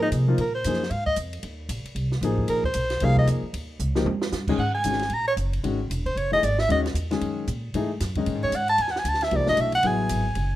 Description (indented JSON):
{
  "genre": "modal jazz",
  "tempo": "229 BPM",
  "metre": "4/4",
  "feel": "swing 59% on 8ths",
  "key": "Bb minor, G# phrygian from 4.6 s",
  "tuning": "A4 = 438 Hz",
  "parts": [
    { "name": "clear soprano saxophone", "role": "melody", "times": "0.0-10.6 s", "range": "Eb4 to A#5", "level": "-24 LUFS", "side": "equal", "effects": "plate reverb" },
    { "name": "warm baby grand piano", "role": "accompaniment", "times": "0.0-10.2 s", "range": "Eb3 to Ab4", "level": "-27 LUFS", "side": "left 4 dB", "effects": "none" },
    { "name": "upright bass", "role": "bass", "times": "0.0-10.6 s", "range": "E1 to C3", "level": "-26 LUFS", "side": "equal", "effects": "none" },
    { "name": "compact cocktail drum kit", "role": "drums", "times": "0.1-10.4 s", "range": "crash cymbal, hi-hat, kick drum, ride cymbal, snare drum, toms", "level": "-34 LUFS", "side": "right 2 dB", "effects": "none" }
  ],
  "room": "moderate club reverb, RT60 0.6 s",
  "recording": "none",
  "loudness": "-22 LUFS",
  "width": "side -14 dB against mid",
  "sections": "0.0-4.6 A section; 4.6-10.6 A section",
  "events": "soprano saxophone solo 0.0-10.6; drum fill 3.8-4.3",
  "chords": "0.0 Bb9sus4; 3.5 Eb9; 4.6 G#9sus4; 8.8 E9sus4",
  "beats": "0.14 | 0.40 0.66 0.92 1.19 | 1.45 1.71 1.97 2.23 | 2.50 2.76 3.02 3.28 | 3.54 3.81 4.07 4.33 | 4.59 4.86 5.12 5.38 | 5.64 5.90 6.17 6.43 | 6.69 6.95 7.21 7.48 | 7.74 8.00 8.26 8.53 | 8.79 9.05 9.31 9.57 | 9.84 10.10 10.36"
}